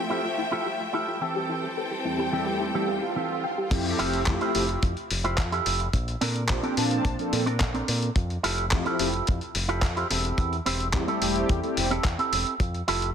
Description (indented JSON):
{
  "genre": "nu-disco, nu disco",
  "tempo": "108 BPM",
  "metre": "4/4",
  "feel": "straight",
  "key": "F major",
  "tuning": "A4 = 442 Hz",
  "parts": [
    { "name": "mellow synth brass", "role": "accompaniment", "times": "0.0-11.9 s", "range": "E2 to A5", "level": "-29 LUFS", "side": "equal", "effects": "chorus, cassette tape, sidechain pumping, analog delay" },
    { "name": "clear symphonic string section", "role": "sustained chords", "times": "0.0-3.7 s", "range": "E3 to G5", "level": "-30 LUFS", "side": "left 1 dB", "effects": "sidechain pumping" },
    { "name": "soft round pluck", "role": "arpeggios", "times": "0.0-3.6 s", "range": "E4 to G5", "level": "-34 LUFS", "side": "left 3 dB", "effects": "chorus, sidechain pumping, analog delay" },
    { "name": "electric guitar with an envelope filter", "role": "riff", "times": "0.1-13.1 s", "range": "E3 to C5", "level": "-30 LUFS", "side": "right 3 dB", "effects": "wide subtle chorus, analog delay" },
    { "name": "swell", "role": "sound effects", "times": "2.8-3.7 s", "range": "none", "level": "-34 LUFS", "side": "right 4 dB", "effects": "none" },
    { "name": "fingered electric bass with an envelope filter", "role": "bass", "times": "3.7-13.1 s", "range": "E1 to Bb2", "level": "-30 LUFS", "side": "equal", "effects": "none" },
    { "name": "dusty soul sampler-style drum kit", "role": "drums", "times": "3.7-13.1 s", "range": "crash cymbal, handclaps, hi-hat", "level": "-30 LUFS", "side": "left 2 dB", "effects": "overdrive" },
    { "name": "kick drum", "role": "drums", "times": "3.7-12.7 s", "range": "none", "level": "-26 LUFS", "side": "equal", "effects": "none" }
  ],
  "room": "moderate plate reverb, RT60 1.9 s, small room ambience",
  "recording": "dreamy mix soaked in reverb",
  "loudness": "-24 LUFS",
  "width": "side -8 dB against mid",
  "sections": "0.0-3.7 A section; 3.7-13.1 B section",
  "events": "swell 2.8-3.7; drop 3.7-13.1",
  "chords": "0.0 Fmaj9; 1.2 Am7/E; 3.7 Fmaj9; 5.9 Bbmaj9; 8.2 Fmaj9; 10.1 Am7/E; 12.6 Fmaj9"
}